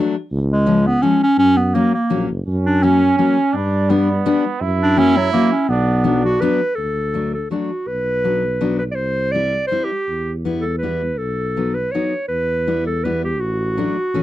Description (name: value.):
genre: alpine folk, alpine dance band.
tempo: 164 BPM.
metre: 3/4.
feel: swing 54% on 8ths.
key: B harmonic minor, D major from 6.8 s.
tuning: A4 = 440 Hz.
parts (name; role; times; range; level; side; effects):
clear clarinet; melody; 0.0-14.2 s; F#3 to D5; -18 LUFS; equal; none.
fingerpicked steel-string acoustic guitar; accompaniment; 0.0-14.2 s; E3 to E4; -20 LUFS; left 4 dB; none.
dark tuba; bass; 0.3-14.2 s; F#1 to G2; -22 LUFS; equal; none.
mellow trumpet; second line; 2.5-6.6 s; B3 to E4; -23 LUFS; right 7 dB; none.
room: light reverb.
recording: dry, close 1970s-style studio recording.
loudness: -16 LUFS.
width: side -14 dB against mid.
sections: 0.0-6.8 A section; 6.8-14.2 B section.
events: none.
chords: 0.3 C#; 1.4 F#; 3.5 G; 4.6 F#; 5.7 Bm; 6.8 D; 7.9 Bm; 9.0 C; 10.1 Em; 11.2 B7; 12.3 Em; 13.4 D/A.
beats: | 0.32 0.68 1.04 | 1.39 1.75 2.11 | 2.47 2.83 3.19 | 3.55 3.91 4.26 | 4.62 4.98 5.33 | 5.69 6.05 6.41 | 6.78 7.15 7.52 | 7.88 8.25 8.62 | 8.98 9.35 9.71 | 10.08 10.45 10.82 | 11.19 11.56 11.93 | 12.30 12.67 13.04 | 13.40 13.77 14.14.